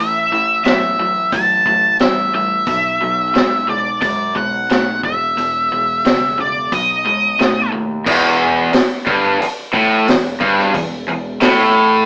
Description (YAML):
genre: classic rock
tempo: 89 BPM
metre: 4/4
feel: straight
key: E minor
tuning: A4 = 440 Hz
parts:
  - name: octave-fuzz lead guitar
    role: melody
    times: 0.0-7.7 s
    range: D5 to A5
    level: -18 LUFS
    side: equal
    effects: wah, distortion
  - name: cranked stack guitar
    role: riff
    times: 0.0-12.1 s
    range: E2 to A3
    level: -23 LUFS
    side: equal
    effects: overdrive
  - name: growling picked electric bass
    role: bass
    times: 0.0-12.0 s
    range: E1 to F#2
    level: -30 LUFS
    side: equal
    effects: overdrive
  - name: vintage drum kit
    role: drums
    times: 0.6-11.6 s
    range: crash cymbal, hi-hat, kick drum, snare drum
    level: -20 LUFS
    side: equal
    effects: none
  - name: tight distorted guitar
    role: riff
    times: 8.1-12.1 s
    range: E2 to A2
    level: -18 LUFS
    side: equal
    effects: distortion
room: moderate studio reverb, RT60 0.7 s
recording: band playing live in one room, AM radio sound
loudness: -16 LUFS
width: mono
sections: 0.0-8.1 A section; 8.1-12.1 B section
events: none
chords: 0.0 A5; 2.7 B5; 5.0 E5; 6.7 B; 8.1 Em